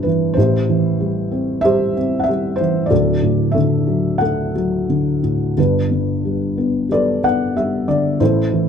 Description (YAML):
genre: classical, lyrical solo piano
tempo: 92 BPM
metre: 4/4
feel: uneven beats, rubato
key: G major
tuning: A4 = 440 Hz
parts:
  - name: felt-muted upright piano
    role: solo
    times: 0.0-8.7 s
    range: D1 to F#5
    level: -15 LUFS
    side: equal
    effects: none
room: light reverb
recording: dark, warm production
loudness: -15 LUFS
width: side -7 dB against mid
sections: 0.0-8.7 A section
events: none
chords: 0.4 Am7; 2.9 Dadd9; 5.6 Gadd9